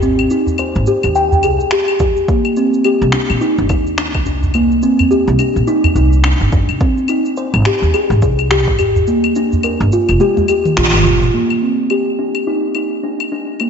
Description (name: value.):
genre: organic downtempo.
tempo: 106 BPM.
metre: 4/4.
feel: swing 60% on 16ths.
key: C minor.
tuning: A4 = 441 Hz.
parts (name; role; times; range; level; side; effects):
kalimba; arpeggios; 0.0-13.7 s; Bb3 to G5; -14 LUFS; equal; low-pass filter, ping-pong delay, slapback echo.
upright bass; bass; 0.0-11.3 s; F1 to Ab2; -16 LUFS; equal; sidechain pumping.
afro-pop drum kit; drums; 0.0-13.7 s; claves, finger snaps, shaker, toms; -20 LUFS; left 2 dB; studio reverb, slapback echo.
udu; percussion; 0.5-11.2 s; none; -20 LUFS; right 1 dB; none.
electronic kick drum; drums; 2.0-8.8 s; none; -16 LUFS; equal; studio reverb.
room: wet lush hall reverb, RT60 1.9 s, small room reverb.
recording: big arena sound, nothing above 7.8 kHz.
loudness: -12 LUFS.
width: side -7 dB against mid.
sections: 0.0-11.3 A section; 11.3-13.7 B section.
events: drum fill 10.2-11.3; kick drops out 10.8-11.3; band accent 10.8; filter sweep on kalimba 11.3-13.7.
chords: 0.0 Abmaj7; 2.3 Cmadd9; 6.8 Abmaj7; 9.1 Gm7; 11.3 Cm9.